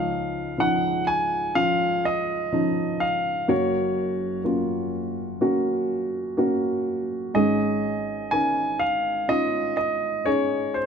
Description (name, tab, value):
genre	pop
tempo	62 BPM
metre	4/4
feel	straight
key	Db major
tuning	A4 = 442 Hz
part	warm concert grand piano	melody	0.0-10.9 s	C5 to Ab5	-24 LUFS	equal	none
part	dark upright piano	accompaniment	0.0-10.9 s	Gb1 to Bb4	-24 LUFS	equal	none
room	moderate plate reverb, RT60 2.7 s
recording	none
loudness	-22 LUFS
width	side -6 dB against mid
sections	0.0-10.9 A section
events	none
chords	0.0 Dbadd9; 3.5 Gb; 7.4 Absus4